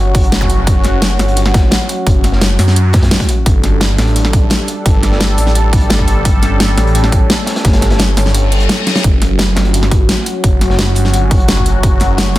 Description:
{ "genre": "dark technical drum and bass", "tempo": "172 BPM", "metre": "4/4", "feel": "straight", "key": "F# phrygian", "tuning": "A4 = 439 Hz", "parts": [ { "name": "sweeping resonant pad", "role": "sustained chords", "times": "0.0-12.4 s", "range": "F#3 to A4", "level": "-19 LUFS", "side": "left 1 dB", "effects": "chorus, sidechain pumping" }, { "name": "phased detuned saw bass", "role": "bass", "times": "0.0-12.4 s", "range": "F#1 to F#2", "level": "-14 LUFS", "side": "equal", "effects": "phaser, tube saturation, sidechain pumping" }, { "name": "crunchy breakbeat drum kit", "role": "drums", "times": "0.1-12.4 s", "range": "hi-hat, snare drum", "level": "-24 LUFS", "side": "equal", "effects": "high-pass filter on hats, studio reverb, high-pass filter on snare, high-pass filter on room" }, { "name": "dubstep drum kit", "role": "drums", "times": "0.1-12.4 s", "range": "hi-hat, snare drum", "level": "-16 LUFS", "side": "equal", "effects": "studio reverb" }, { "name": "electronic kick drum", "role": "drums", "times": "0.1-11.9 s", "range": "none", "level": "-12 LUFS", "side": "equal", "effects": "studio reverb" }, { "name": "zap and reverse cymbal", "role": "sound effects", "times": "0.4-0.5, 8.4-9.0 s", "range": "none", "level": "-23 LUFS", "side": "left 4 dB", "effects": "none" } ], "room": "light reverb, digital ambience", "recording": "dense, heavily limited modern master", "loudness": "-10 LUFS", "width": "side -16 dB against mid", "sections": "0.0-12.4 A section", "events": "kick drops out 8.3-9.0; reverse cymbal 8.4-9.0; drum fill 8.9", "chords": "0.0 F#5; 3.5 G5; 9.0 F#5" }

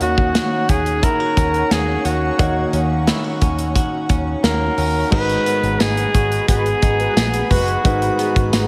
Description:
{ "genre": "1980s-style pop", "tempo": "88 BPM", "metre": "4/4", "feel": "straight", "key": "G# minor", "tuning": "A4 = 440 Hz", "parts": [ { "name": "clear flugelhorn", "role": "melody", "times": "0.0-8.7 s", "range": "F#4 to B4", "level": "-23 LUFS", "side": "equal", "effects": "shimmer reverb" }, { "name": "warm concert grand piano", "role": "accompaniment", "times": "0.0-8.7 s", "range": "G#2 to C#5", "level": "-26 LUFS", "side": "equal", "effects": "shimmer reverb" }, { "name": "granular cloud pad", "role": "sustained chords", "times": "0.0-8.7 s", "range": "G#4 to C#6", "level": "-32 LUFS", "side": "equal", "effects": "built-in reverb, shimmer reverb" }, { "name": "direct-recorded clean electric guitar", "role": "riff", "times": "0.0-8.7 s", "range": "D#3 to F#4", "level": "-30 LUFS", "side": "equal", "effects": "subtle chorus, digital delay, shimmer reverb" }, { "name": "vintage muted picked electric bass", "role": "bass", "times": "0.0-8.7 s", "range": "F#1 to D#2", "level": "-25 LUFS", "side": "equal", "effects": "none" }, { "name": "modern studio drum kit", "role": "drums", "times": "0.0-8.7 s", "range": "crash cymbal, hi-hat, kick drum, snare drum, tambourine", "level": "-22 LUFS", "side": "equal", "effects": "gated reverb" }, { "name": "mellow synth brass", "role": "stabs", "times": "6.5-7.8 s", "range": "G#3 to B4", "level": "-30 LUFS", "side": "equal", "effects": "chorus, shimmer reverb" } ], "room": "moderate lush hall reverb, RT60 3.1 s", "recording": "none", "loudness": "-18 LUFS", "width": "mono", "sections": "0.0-5.1 A section; 5.1-8.7 B section", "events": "none", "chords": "0.0 D#m7; 5.1 G#m7" }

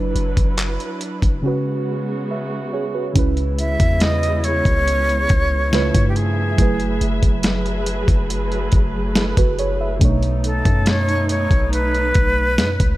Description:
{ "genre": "contemporary R&B", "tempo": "70 BPM", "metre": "4/4", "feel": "straight", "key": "unclear", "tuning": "A4 = 440 Hz", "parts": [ { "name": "muted felt-like synth keys", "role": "accompaniment", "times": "0.0-13.0 s", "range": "B2 to E5", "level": "-24 LUFS", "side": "right 3 dB", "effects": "chorus" }, { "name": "muted studio string section", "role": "sustained chords", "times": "0.0-13.0 s", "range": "C#3 to E5", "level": "-27 LUFS", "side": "equal", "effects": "sidechain pumping" }, { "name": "warm 808-style bass", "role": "bass", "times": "0.0-13.0 s", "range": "F#1 to G2", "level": "-21 LUFS", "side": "equal", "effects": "none" }, { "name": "dusty soul sampler-style drum kit", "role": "drums", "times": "0.2-13.0 s", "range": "handclaps, hi-hat, kick drum, snare drum", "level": "-18 LUFS", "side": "equal", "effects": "overdrive" }, { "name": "breathy bright concert flute", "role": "melody", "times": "3.6-13.0 s", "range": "G4 to E5", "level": "-21 LUFS", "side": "equal", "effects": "tape echo" } ], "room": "little or no reverb", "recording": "none", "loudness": "-16 LUFS", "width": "side -16 dB against mid", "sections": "0.0-3.2 A section; 3.2-13.0 B section", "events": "break 1.4-3.2", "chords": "0.0 D6/F#; 1.4 C#7sus4; 5.7 C#7alt; 6.6 F#m11; 10.0 B9" }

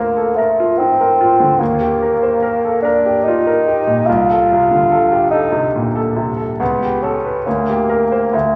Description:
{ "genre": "classical, romantic duo for bassoon and grand piano", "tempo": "65-73 BPM", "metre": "3/4", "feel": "rubato", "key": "unclear", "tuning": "A4 = 440 Hz", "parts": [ { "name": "warm bassoon", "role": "melody", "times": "0.0-8.6 s", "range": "A3 to F4", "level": "-17 LUFS", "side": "equal", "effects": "none" }, { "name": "bright grand piano", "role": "accompaniment", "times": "0.0-8.6 s", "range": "C2 to C5", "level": "-20 LUFS", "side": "equal", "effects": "none" } ], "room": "wet recital hall reverb, RT60 1.5 s", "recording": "recorded in a church or concert hall, small room ambience", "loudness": "-15 LUFS", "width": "mono", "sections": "0.0-8.6 A section", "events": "none", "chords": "0.0 Bb/D; 1.6 Eb; 4.1 C13sus4; 6.6 A7/C#; 7.5 Gm/D" }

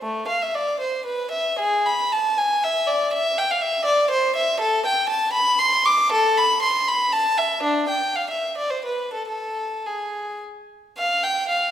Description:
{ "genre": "classical, baroque-style suite movement for unaccompanied violin", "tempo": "102-124 BPM", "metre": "3/4", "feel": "rubato", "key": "A minor", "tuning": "A4 = 442 Hz", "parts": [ { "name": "warm violin", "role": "solo", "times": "0.0-11.7 s", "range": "A3 to D6", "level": "-19 LUFS", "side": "equal", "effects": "none" } ], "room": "wet recital hall reverb, RT60 1.5 s", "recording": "recorded in a church or concert hall", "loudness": "-19 LUFS", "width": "side -10 dB against mid", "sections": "0.0-11.0 A section", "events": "none", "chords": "none" }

